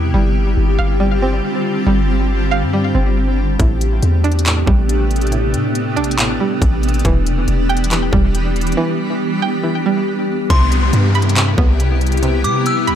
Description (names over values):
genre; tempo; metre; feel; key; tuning
hip hop, atmospheric cloud-rap; 139 BPM; 4/4; half-time; C major; A4 = 440 Hz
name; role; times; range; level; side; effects
granular cloud pad; sustained chords; 0.0-13.0 s; C3 to G4; -19 LUFS; equal; built-in reverb, sidechain pumping
string-like resonator pluck; arpeggios; 0.0-13.0 s; A2 to B5; -22 LUFS; right 3 dB; chorus, low-pass filter, ping-pong delay
warm 808-style bass; bass; 0.0-13.0 s; E1 to C3; -16 LUFS; equal; none
trap drum kit; drums; 3.6-13.0 s; handclaps, hi-hat, kick drum; -18 LUFS; equal; none
delicate synth tine bell; melody; 10.5-13.0 s; C6 to E6; -21 LUFS; left 4 dB; chorus, phaser, low-pass filter, ping-pong delay
downlifter; sound effects; 10.5-13.0 s; none; -25 LUFS; left 1 dB; none
room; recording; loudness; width
little or no reverb; none; -13 LUFS; side -10 dB against mid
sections
0.0-10.5 A section; 10.5-13.0 B section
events
break 8.8-10.5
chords
0.1 G7sus4; 3.6 Am11; 7.0 Em7; 10.5 Cmaj7